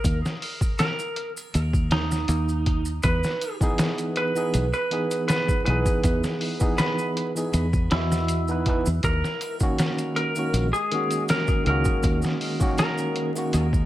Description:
trip hop; 80 BPM; 4/4; straight; Eb phrygian; A4 = 440 Hz
clean lap steel guitar; melody; 0.0-13.3 s; Eb4 to B4; -28 LUFS; right 1 dB; tape echo
fingered electric bass; bass; 0.0-13.9 s; Bb1 to E2; -24 LUFS; equal
trip hop sampler-style drum kit; drums; 0.0-13.9 s; hi-hat, kick drum, snare drum; -25 LUFS; equal
maracas and triangle; percussion; 0.0-13.9 s; -40 LUFS; right 1 dB
overdriven tine electric piano; accompaniment; 3.6-13.7 s; Eb3 to D#5; -27 LUFS; right 1 dB; harmonic tremolo, vintage 12-bit sampler grit, tape echo
bowed-like drone; texture; 9.6-13.9 s; Ab3; -38 LUFS; right 1 dB
light reverb, digital ambience; vinyl crackle; -22 LUFS; side -14 dB against mid
0.0-13.9 A section
0.0 Eb5; 3.0 Emaj7; 9.0 Ebm7

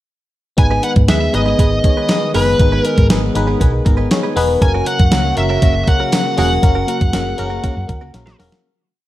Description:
1980s-style pop; 119 BPM; 4/4; straight; A4 = 438 Hz
smooth overdriven lead guitar; melody; 0.6-8.4 s; B4 to G#5; -20 LUFS; equal
FM electric piano; accompaniment; 0.6-8.7 s; A#3 to A#5; -20 LUFS; left 3 dB; chorus
warm analog pad; sustained chords; 0.6-8.6 s; C#3 to G#4; -24 LUFS; right 1 dB; chorus
direct-recorded clean electric guitar; riff; 0.6-8.6 s; G#3 to B4; -27 LUFS; right 5 dB; wide subtle chorus
hollow-body short-scale fingered electric bass; bass; 0.6-8.5 s; E1 to G#2; -18 LUFS; equal
clean 12-bit digital drum machine; drums; 0.6-8.6 s; hi-hat, kick drum, snare drum, tambourine; -16 LUFS; equal; gated reverb
light reverb; -12 LUFS; side -14 dB against mid
0.6-8.6 pre-chorus
FM electric piano fill 3.6-4.6; fade-out 6.6-8.6; drum fill 8.1-8.6
0.6 G#m; 4.6 F#

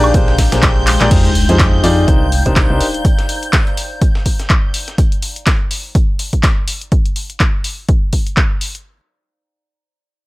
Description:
piano house; 124 BPM; 4/4; swing 57% on 16ths; F dorian; A4 = 440 Hz
string machine, violins; sustained chords; 0.0-5.0 s; G6; -26 LUFS; equal; ensemble chorus, sidechain pumping
clear baby grand piano; riff; 0.0-2.8 s; D4 to D5; -19 LUFS; equal; sidechain pumping, low-pass filter, tape echo
solid FM bass; bass; 0.0-2.8 s; F1 to F2; -15 LUFS; equal; sidechain pumping
punchy analog drum machine; drums; 0.0-8.8 s; crash cymbal, handclaps, hi-hat, ride cymbal, woodblock; -19 LUFS; left 1 dB
warbly tape-like pad; texture; 0.0-3.0 s; Ab3 to C6; -22 LUFS; left 3 dB; chorus, built-in reverb, sidechain pumping
breakbeat sampler-style drum kit; drums; 0.1-6.8 s; hi-hat, snare drum; -27 LUFS; equal; high-pass filter on snare, sidechain pumping on hats, high-pass filter on hats
electronic kick drum; drums; 0.1-8.5 s; -14 LUFS; equal
sub drop; sound effects; 1.1-3.0 s; -20 LUFS; equal
digital ambience; dry, gritty hardware recording; -12 LUFS; side -20 dB against mid
0.0-1.1 A section; 1.1-8.9 B section; 8.9-10.3 C section
drop 0.0-1.1; drum fill 0.9; impact 1.1-3.0
0.0 Bb13; 1.1 Fm9; 2.1 Cm9; 3.0 N.C.

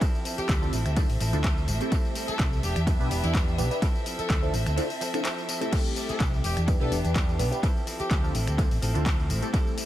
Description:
filtered disco house; 126 BPM; 4/4; swing 54% on 16ths; D dorian; A4 = 440 Hz
dark studio violin section; sustained chords; 0.0-9.9 s; C4 to E5; -37 LUFS; right 1 dB; sidechain pumping
direct-recorded clean electric guitar; riff; 0.0-9.9 s; F3 to A4; -36 LUFS; right 1 dB; sidechain pumping, analog delay
electronic kick drum; drums; 0.0-9.6 s; -25 LUFS; equal; overdrive
punchy analog drum machine; drums; 0.0-9.9 s; crash cymbal, finger snaps, handclaps, hi-hat, ride cymbal, tambourine; -34 LUFS; left 1 dB; overdrive, sidechain pumping on hats, sidechain pumping on perc, sidechain pumping on cymbals, analog delay
bright horn section; melody; 0.4-8.3 s; E4 to A4; -37 LUFS; left 1 dB; sidechain pumping, analog delay
hollow-body short-scale fingered electric bass; bass; 0.4-9.4 s; E1 to E2; -27 LUFS; equal; sidechain pumping
funky polysynth comp; accompaniment; 0.6-9.9 s; A3 to B4; -34 LUFS; equal; chorus, phaser, sidechain pumping
light reverb; echo-heavy mix; -24 LUFS; side -13 dB against mid
0.0-9.9 A section
kick drops out 4.8-5.7
0.0 Dm9; 1.9 C6; 2.6 Em7; 3.8 Dm9; 5.7 C6; 6.4 Em7; 7.6 Dm9

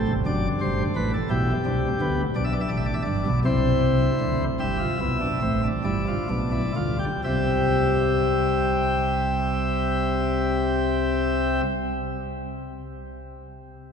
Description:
classical, baroque-style 3-part fugue for pipe organ; 40-58 BPM (dotted quarters); 6/8; straight; C major; A4 = 440 Hz
chamber organ, principal chorus; solo; 0.0-11.6 s; F#1 to E5; -22 LUFS; equal
wet cathedral reverb, RT60 6.2 s; minimal, uncompressed stereo recording; -21 LUFS; side -6 dB against mid
0.0-7.2 A section; 7.2-13.2 B section
slowing down 1.3-7.2
0.3 D7/F#; 1.3 G/B; 2.4 G; 3.4 C; 4.6 C/G; 5.8 G7; 7.2 C

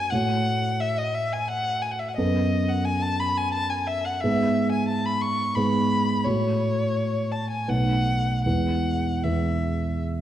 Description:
classical, romantic duo for violin and grand piano; 75-90 BPM; 3/4; rubato; A4 = 441 Hz
warm violin; melody; 0.0-10.0 s; C#5 to C#6; -26 LUFS; left 1 dB
dark concert grand piano; accompaniment; 0.0-10.2 s; B1 to C#5; -24 LUFS; right 1 dB
wet concert hall reverb, RT60 2.0 s; dark, warm production; -22 LUFS; side -12 dB against mid
0.0-10.2 A section
0.1 F#m/A; 2.2 B5/F#; 4.2 G#m; 6.3 F#m/A; 7.7 B7; 8.4 E

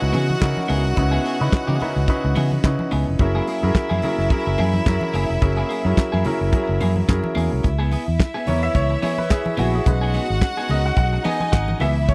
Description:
disco; 108 BPM; 4/4; swing 56% on 16ths; A4 = 440 Hz
clear studio violin section; second line; 0.0-12.1 s; D#4 to F#5; -29 LUFS; equal
clean electric guitar; accompaniment; 0.0-12.1 s; A#3 to A#4; -31 LUFS; equal
clear baby grand piano; accompaniment; 0.0-12.1 s; C#3 to G#5; -27 LUFS; equal
fingered electric bass; bass; 0.0-12.1 s; E#1 to C#3; -24 LUFS; equal
damped 70s drum kit; drums; 0.1-12.1 s; handclaps, hi-hat, kick drum, snare drum; -22 LUFS; equal
congas; percussion; 0.1-12.1 s; -32 LUFS; equal
little or no reverb; dry, close 1970s-style studio recording; -20 LUFS; mono
0.0-7.6 A section; 7.6-12.1 B section
grand piano solo 7.6-12.1
0.0 F#9; 7.6 C#m7; 9.9 B6

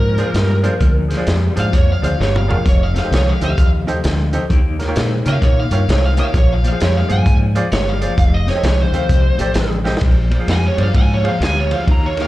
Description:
electric blues shuffle; 130 BPM; 4/4; swing 63% on 8ths; Bb mixolydian; A4 = 440 Hz
lead guitar through a small cranked amp; melody; 0.0-12.3 s; Bb4 to Bb5; -22 LUFS; right 1 dB; overdrive, slapback echo
electric guitar through a small old amp; riff; 0.0-12.3 s; F2 to C4; -24 LUFS; left 4 dB; tremolo, slapback echo
deep dub fingered electric bass; bass; 0.0-12.2 s; F1 to Db3; -17 LUFS; equal
bright upright piano; accompaniment; 0.2-12.3 s; D4 to F5; -26 LUFS; right 3 dB; slapback echo
crunchy breakbeat drum kit; drums; 0.2-12.2 s; hi-hat, kick drum, ride cymbal, snare drum, toms; -18 LUFS; equal
small room ambience; live gig heard through the venue's PA, club ambience; -13 LUFS; side -16 dB against mid
0.0-10.0 A section; 10.0-12.3 A section
lead electric guitar solo 0.0-12.3; drum fill 2.2-2.7, 9.8
0.0 Bb7; 2.7 F7; 4.5 Eb7; 6.3 Bb7(no3); 8.2 F7; 10.0 Bb7

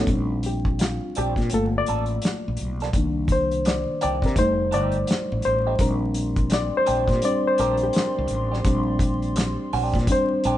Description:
R&B, neo-soul; 84 BPM; 4/4; swing 64% on 16ths; Bb major; A4 = 442 Hz
clean electric guitar; second line; 0.0-10.6 s; Eb3 to A4; -30 LUFS; right 6 dB; wah
reed electric piano; accompaniment; 0.0-10.6 s; Eb3 to D5; -23 LUFS; left 1 dB
hollow soft pad; sustained chords; 0.0-0.1, 6.2-10.6 s; G4 to C6; -35 LUFS; right 1 dB; chorus
mellow fretless electric bass; bass; 0.0-10.6 s; F1 to C3; -27 LUFS; equal
cloth-damped thuddy drum kit; drums; 0.1-10.6 s; hi-hat, kick drum, snare drum; -25 LUFS; equal
moderate large studio reverb, RT60 1.3 s; band playing live in one room, vinyl crackle, nothing above 10.3 kHz; -20 LUFS; side -13 dB against mid
0.1-10.6 A section
reed electric piano solo 0.1-10.6
0.1 Bb69; 1.5 Gm9; 2.9 Cm9; 4.4 F9; 5.8 Bb69

